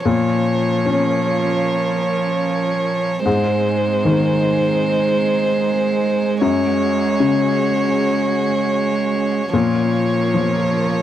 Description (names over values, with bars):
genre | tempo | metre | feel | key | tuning
neoclassical piano and strings | 76 BPM | 4/4 | rubato | Bb minor | A4 = 440 Hz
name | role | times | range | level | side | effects
felt-muted upright piano | accompaniment | 0.0-11.0 s | Gb2 to Db4 | -20 LUFS | left 4 dB | none
warm studio string section | sustained chords | 0.0-11.0 s | C4 to Bb4 | -28 LUFS | right 3 dB | none
rich violin | melody | 0.1-11.0 s | C5 to Db5 | -20 LUFS | left 1 dB | none
warm cello | second line | 0.1-11.0 s | F3 to Ab3 | -22 LUFS | right 8 dB | none
room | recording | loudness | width
light reverb | dry, close 1970s-style studio recording | -16 LUFS | side -11 dB against mid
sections
0.0-11.0 A section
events
none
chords
0.0 Bbm; 3.3 Ab; 6.4 Gbsus2; 9.5 Bbm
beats
| 0.06 0.86 1.66 2.46 | 3.26 4.05 4.84 5.63 | 6.41 7.20 7.98 8.76 | 9.54 10.33